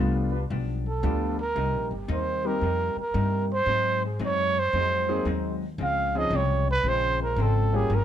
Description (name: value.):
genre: jazz.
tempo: 113 BPM.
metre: 4/4.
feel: swing 66% on 8ths.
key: unclear.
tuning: A4 = 442 Hz.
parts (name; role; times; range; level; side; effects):
vintage hollow-body jazz guitar; accompaniment; 0.0-8.0 s; G2 to Eb4; -32 LUFS; left 4 dB; none.
warm concert grand piano; accompaniment; 0.0-7.9 s; F3 to Ab4; -30 LUFS; left 1 dB; none.
upright bass; bass; 0.0-8.0 s; G1 to Ab2; -27 LUFS; equal; none.
dark trombone section; sustained chords; 0.3-0.4, 4.7-7.7 s; G3 to C5; -37 LUFS; left 2 dB; none.
breathy trumpet; melody; 0.9-8.0 s; G4 to F5; -26 LUFS; right 3 dB; plate reverb.
room: light reverb.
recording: close, detailed microphones.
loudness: -23 LUFS.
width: side -10 dB against mid.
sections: 0.0-8.0 A section.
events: trumpet solo 0.0-8.0.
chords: 0.0 G7; 1.6 Cm7; 3.7 Ab7; 5.8 Dbmaj7.